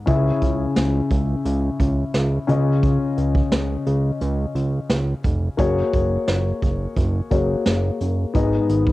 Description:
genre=1980s-style pop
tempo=87 BPM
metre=4/4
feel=straight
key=unclear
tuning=A4 = 439 Hz
part: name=dark grand piano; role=accompaniment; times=0.0-8.9 s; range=G#2 to E5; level=-22 LUFS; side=left 3 dB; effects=cassette tape, plate reverb
part: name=fat analog bass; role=bass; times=0.1-8.9 s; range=E#1 to C#2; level=-21 LUFS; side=right 1 dB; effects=none
part: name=vintage brush drum kit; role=drums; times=0.1-8.9 s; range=hi-hat, kick drum, snare drum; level=-22 LUFS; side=right 1 dB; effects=cassette tape
room=moderate studio reverb, RT60 0.5 s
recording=home recording on cassette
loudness=-18 LUFS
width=side -17 dB against mid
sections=0.0-8.9 A section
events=none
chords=0.1 C#m; 2.5 C#add9; 5.6 F#add9; 8.3 G#m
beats=| 0.07 0.76 1.45 2.14 | 2.83 3.52 4.21 4.90 | 5.59 6.28 6.97 7.66 | 8.35

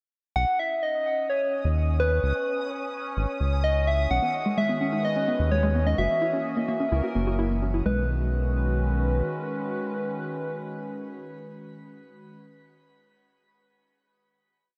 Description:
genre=IDM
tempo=128 BPM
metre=4/4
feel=straight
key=B major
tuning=A4 = 440 Hz
part: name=soft struck synth lead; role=melody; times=0.4-12.4 s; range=B4 to F#5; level=-30 LUFS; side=equal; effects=chorus, shimmer reverb, analog delay
part: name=round analog bass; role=bass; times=0.4-9.2 s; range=F#1 to D#2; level=-27 LUFS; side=equal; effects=none
part: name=bubbling stepped-filter texture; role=texture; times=0.7-7.9 s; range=C#4 to D#6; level=-39 LUFS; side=equal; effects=chorus, built-in reverb, shimmer reverb
part: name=hollow soft pad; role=sustained chords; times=4.1-12.4 s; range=D#3 to B4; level=-34 LUFS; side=equal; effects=chorus
part: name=warbly dusty pluck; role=arpeggios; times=4.1-8.1 s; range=G#3 to F#4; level=-32 LUFS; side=equal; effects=chorus, analog delay
room=moderate spring reverb, RT60 1.7 s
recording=echo-heavy mix, nothing above 10.9 kHz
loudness=-26 LUFS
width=mono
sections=0.4-7.9 groove; 7.9-11.6 final chord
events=none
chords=0.4 Badd9; 2.2 C#sus2; 4.1 B69; 6.0 F#7; 7.9 B69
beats=| 0.36 0.83 1.29 1.76 | 2.23 2.70 3.17 3.64 | 4.11 4.58 5.04 5.51 | 5.98 6.45 6.92 7.39 | 7.86 8.33 8.79 9.26 | 9.73 10.20 10.67 11.14

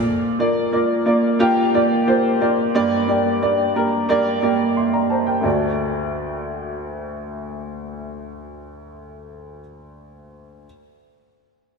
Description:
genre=pop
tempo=89 BPM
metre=4/4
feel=straight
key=unclear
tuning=A4 = 439 Hz
part: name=warm upright piano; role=accompaniment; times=0.0-10.7 s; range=D2 to C6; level=-18 LUFS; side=right 1 dB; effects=lush chorus
room=wet lush hall reverb, RT60 2.7 s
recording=dreamy mix soaked in reverb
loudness=-17 LUFS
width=side -4 dB against mid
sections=0.0-5.4 A section; 5.4-8.1 B section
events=none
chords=0.0 Bb; 2.7 Gm; 5.4 D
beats=| 0.05 0.73 1.40 2.08 | 2.75 3.42 4.10 4.77 | 5.45 6.12 6.80 7.47

